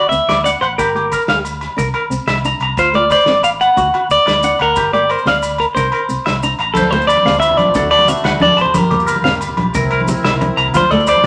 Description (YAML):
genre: highlife guitar band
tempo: 120 BPM (dotted quarters)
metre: 12/8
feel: straight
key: D minor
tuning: A4 = 440 Hz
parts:
  - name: clean electric guitar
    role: melody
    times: 0.0-11.3 s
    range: A4 to F#5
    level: -16 LUFS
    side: equal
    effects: none
  - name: semi-hollow electric guitar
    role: arpeggios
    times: 0.0-11.2 s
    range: F4 to Bb5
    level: -21 LUFS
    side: equal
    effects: none
  - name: nylon-string guitar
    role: accompaniment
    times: 0.1-11.1 s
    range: A3 to D4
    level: -26 LUFS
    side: equal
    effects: none
  - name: fingered electric bass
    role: bass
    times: 0.1-11.3 s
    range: G1 to D2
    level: -27 LUFS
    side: equal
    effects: none
  - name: vintage drum kit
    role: drums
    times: 0.1-11.3 s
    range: crash cymbal, hi-hat, kick drum, snare drum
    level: -27 LUFS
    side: equal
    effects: none
  - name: maracas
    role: percussion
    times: 0.1-11.1 s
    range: none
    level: -36 LUFS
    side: equal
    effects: none
  - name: agogo bells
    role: percussion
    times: 0.3-11.2 s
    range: none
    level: -26 LUFS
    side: equal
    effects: none
  - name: congas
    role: percussion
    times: 6.7-11.3 s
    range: none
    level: -23 LUFS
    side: equal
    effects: none
  - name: accordion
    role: sustained chords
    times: 6.8-11.3 s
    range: A3 to C5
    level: -26 LUFS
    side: equal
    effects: none
room: wet studio reverb, RT60 0.9 s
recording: none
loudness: -14 LUFS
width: mono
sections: 0.0-6.8 A section; 6.8-11.3 B section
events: none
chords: 0.0 D; 0.8 Gm; 1.8 C7(no3); 2.8 Dm7; 3.8 D; 4.8 Gm; 5.8 C7(no3); 6.8 Dm7; 7.8 D; 8.7 Gm7; 9.7 C7; 10.7 Dm7